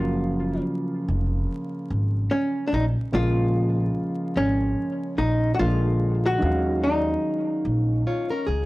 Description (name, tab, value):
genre	lo-fi hip hop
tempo	73 BPM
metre	4/4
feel	swing 60% on 16ths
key	Eb minor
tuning	A4 = 440 Hz
part	archtop guitar, miked and amplified	melody	0.0-8.0 s	Db4 to Gb4	-25 LUFS	equal	low-pass filter, analog delay
part	dark upright piano	accompaniment	0.0-8.7 s	Db3 to F5	-27 LUFS	equal	low-pass filter
part	upright bass	bass	0.0-8.7 s	F1 to Eb2	-24 LUFS	equal	tube saturation
part	nylon-string guitar	second line	8.1-8.7 s	Db4 to Db5	-25 LUFS	left 2 dB	low-pass filter
room	light reverb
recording	dry, gritty hardware recording, vinyl crackle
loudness	-21 LUFS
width	side -19 dB against mid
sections	0.0-8.7 A section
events	none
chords	0.0 Gbmaj7; 3.1 Bbm7; 5.6 Bb7; 6.4 Ebm11